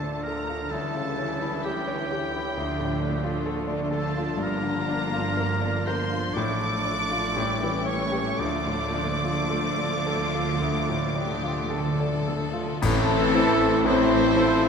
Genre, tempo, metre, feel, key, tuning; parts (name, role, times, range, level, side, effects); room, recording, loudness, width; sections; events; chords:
classical, romantic movement for piano and orchestra; 53-66 BPM; 4/4; rubato; D minor; A4 = 440 Hz
clear concert grand piano; melody; 0.0-14.7 s; A1 to D5; -29 LUFS; left 2 dB
rich studio violin section; melody; 0.0-14.7 s; A4 to D6; -34 LUFS; left 2 dB
clear oboe; second line; 0.0-12.3 s; G4 to D5; -33 LUFS; right 2 dB
rich studio violin section; second line; 0.0-14.7 s; C#4 to A4; -34 LUFS; left 2 dB
rich studio viola section; accompaniment; 0.0-14.7 s; D3 to C4; -32 LUFS; left 1 dB
dark French horn section; sustained chords; 0.0-14.7 s; D3 to E4; -32 LUFS; left 5 dB
rich studio cello section; bass; 0.0-14.7 s; G2 to D3; -35 LUFS; right 3 dB
rich studio double bass section; bass; 0.0-14.7 s; G1 to D2; -33 LUFS; right 6 dB
timpani; percussion; 6.4-14.3 s; A2 to D3; -34 LUFS; left 1 dB
cymbal swell, clash cymbals and concert bass drum; percussion; 8.4-14.7 s; -34 LUFS; equal
mellow large flute ensemble; second line; 12.8-14.7 s; A4 to C5; -30 LUFS; left 1 dB
dark trombone section; sustained chords; 12.8-14.7 s; E3 to A3; -31 LUFS; right 5 dB
warm trumpet; stabs; 12.8-14.7 s; A4 to C5; -27 LUFS; right 3 dB
mellow tuba; bass; 12.8-14.7 s; barely audible
moderate scoring stage reverb, RT60 2.0 s; -23 LUFS; side -6 dB against mid
0.0-12.8 A section; 12.8-14.7 B section
timpani fill 8.4-12.8; band accent 12.8-13.9
0.0 Dm; 0.7 C#dim/D; 2.6 Dm; 4.4 Gm7; 6.4 Dm/A; 7.4 A7; 8.4 Dm; 12.8 Am